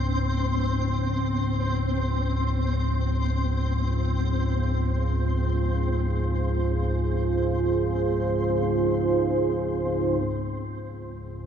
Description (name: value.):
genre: dark ambient drone.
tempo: free time.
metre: none.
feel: none.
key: C# major.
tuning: A4 = 440 Hz.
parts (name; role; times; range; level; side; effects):
dark analog pad; sustained chords; 0.5-11.5 s; E#4 to B#4; -28 LUFS; right 4 dB; chorus.
analog drone; drone; 0.0-11.5 s; C#2 to G#2; -26 LUFS; left 1 dB; lush chorus.
flickering grainy texture; texture; 0.0-10.3 s; B#3 to B#5; -31 LUFS; left 1 dB; built-in reverb.
room: moderate spring reverb, RT60 2.3 s.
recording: studio reverb.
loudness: -23 LUFS.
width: side -8 dB against mid.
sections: 0.0-10.2 A section; 10.2-11.5 B section.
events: filter sweep on synth drone 0.0-10.2.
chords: 0.0 C#maj7.